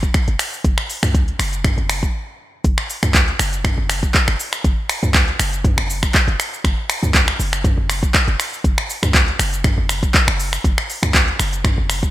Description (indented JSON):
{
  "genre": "afro house",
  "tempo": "120 BPM",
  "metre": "4/4",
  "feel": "swing 53% on 16ths",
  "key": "unclear",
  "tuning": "A4 = 440 Hz",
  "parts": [
    { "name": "warm 808-style bass", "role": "bass", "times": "0.0-12.1 s", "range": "F#1 to C#2", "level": "-21 LUFS", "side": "equal", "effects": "sidechain pumping" },
    { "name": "deep house drum kit", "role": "drums", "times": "0.0-12.1 s", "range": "finger snaps, handclaps, hi-hat, shaker, toms", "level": "-18 LUFS", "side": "equal", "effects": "gated reverb" },
    { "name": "electronic kick drum", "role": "drums", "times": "0.0-12.1 s", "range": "none", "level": "-17 LUFS", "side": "equal", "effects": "none" }
  ],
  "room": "light reverb",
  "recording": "bright 1980s-style digital production",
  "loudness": "-15 LUFS",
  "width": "side -14 dB against mid",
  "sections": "0.0-2.6 A section; 2.6-12.1 B section",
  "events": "stop 2.1-2.6; drop 2.6-12.1",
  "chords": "none"
}